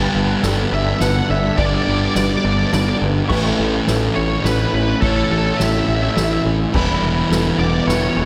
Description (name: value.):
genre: post-rock.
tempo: 105 BPM.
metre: 3/4.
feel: straight.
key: G lydian.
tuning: A4 = 440 Hz.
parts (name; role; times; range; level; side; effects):
pedal steel guitar; sustained chords; 0.0-8.3 s; G4 to C#6; -32 LUFS; equal; ensemble chorus.
clean electric guitar; arpeggios; 0.0-8.3 s; E2 to A4; -28 LUFS; equal; none.
felt-muted upright piano; arpeggios; 0.0-8.3 s; A4 to D5; -31 LUFS; equal; tape echo.
sludgy distorted guitar; riff; 0.0-8.3 s; G2 to G4; -22 LUFS; equal; overdrive.
fingered electric bass; bass; 0.0-8.3 s; E1 to A1; -23 LUFS; equal; none.
soft-mallet drum kit; drums; 0.4-8.3 s; crash cymbal, kick drum, ride cymbal, snare drum; -26 LUFS; equal; none.
crunchy overdriven guitar; melody; 0.7-8.2 s; A4 to F#5; -26 LUFS; equal; analog chorus, tape echo.
room: moderate lush hall reverb, RT60 1.7 s, studio ambience.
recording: dreamy mix soaked in reverb.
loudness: -17 LUFS.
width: mono.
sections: 0.0-8.3 A section.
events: none.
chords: 0.0 Gadd9; 3.3 A; 6.7 Em.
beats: 0.43 1.00 | 1.58 2.15 2.73 | 3.30 3.87 4.45 | 5.02 5.59 6.17 | 6.74 7.31 7.88.